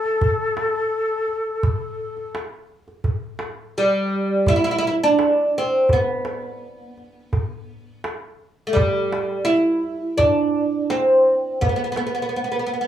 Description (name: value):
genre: Turkish makam ensemble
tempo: 84 BPM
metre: 4/4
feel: straight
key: unclear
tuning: A4 = 440 Hz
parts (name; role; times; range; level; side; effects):
- oud; melody; 0.0-12.9 s; G3 to E4; -18 LUFS; right 1 dB; none
- breathy ney; second line; 0.0-2.4 s; A4; -22 LUFS; left 2 dB; none
- darbuka; percussion; 0.0-12.4 s; none; -24 LUFS; right 1 dB; none
room: moderate small room reverb, RT60 0.6 s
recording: none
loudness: -18 LUFS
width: side -10 dB against mid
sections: 0.0-3.1 A section; 3.1-12.9 B section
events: none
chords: none